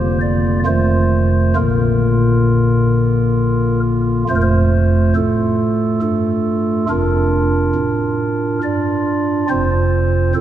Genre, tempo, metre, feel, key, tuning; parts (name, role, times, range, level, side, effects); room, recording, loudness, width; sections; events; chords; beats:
classical, chorale-style piece for pipe organ; 68 BPM; 3/4; uneven beats; Bb major, F major from 4.3 s; A4 = 440 Hz
pipe organ, stopped flute; solo; 0.0-10.4 s; F1 to D5; -14 LUFS; equal
wet church reverb, RT60 2.7 s; -14 LUFS; side -11 dB against mid
0.0-4.3 A section; 4.3-10.4 B section
0.0 Bb/F; 0.7 F7; 1.6 Bb; 4.3 F; 6.9 Bb/F; 9.5 F
0.67 | 1.57 2.48 3.38 | 4.29 5.16 6.02 | 6.89 7.76 8.63 | 9.49 10.36